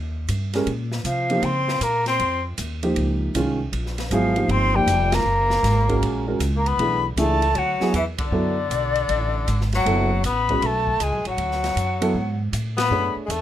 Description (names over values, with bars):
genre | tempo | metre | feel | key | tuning
modal jazz | 157 BPM | 4/4 | swing 65% on 8ths | Bb dorian, B dorian from 6.8 s | A4 = 440 Hz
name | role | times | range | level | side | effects
upright bass | bass | 0.0-13.4 s | F1 to Db3 | -24 LUFS | equal | none
open jazz drum kit | drums | 0.3-13.4 s | hi-hat, kick drum, ride cymbal, snare drum | -32 LUFS | right 1 dB | none
warm upright piano | accompaniment | 0.6-13.4 s | Eb3 to C#5 | -24 LUFS | right 2 dB | none
bright tenor saxophone | second line | 1.0-13.4 s | D3 to C4 | -27 LUFS | left 4 dB | none
concert flute | melody | 1.1-13.4 s | D5 to C6 | -24 LUFS | left 1 dB | none
room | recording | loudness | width
light reverb | none | -19 LUFS | side -11 dB against mid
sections
0.0-6.8 A section; 6.8-13.4 B section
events
band accent 5.1, 8.1, 12.7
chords
0.0 Bbm69; 3.7 Fm11; 5.3 Gb; 6.8 Bm7